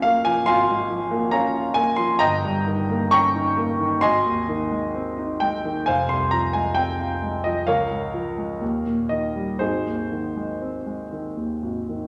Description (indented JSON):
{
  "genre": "classical, romantic character piece for solo piano",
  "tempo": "56-71 BPM",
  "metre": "4/4",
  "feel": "rubato",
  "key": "Ab major",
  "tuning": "A4 = 440 Hz",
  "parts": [
    { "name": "warm concert grand piano", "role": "solo", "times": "0.0-12.1 s", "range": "F1 to Db6", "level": "-23 LUFS", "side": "equal", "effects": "none" }
  ],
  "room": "wet recital hall reverb, RT60 1.4 s",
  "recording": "none",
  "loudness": "-23 LUFS",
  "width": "mono",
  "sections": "0.0-12.1 A section",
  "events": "none",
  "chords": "0.0 Bbm7/Ab; 2.2 Eb7/G; 4.0 Ab; 5.9 Fm; 7.7 Bbm7/Db; 8.6 Eb7; 9.6 Ab"
}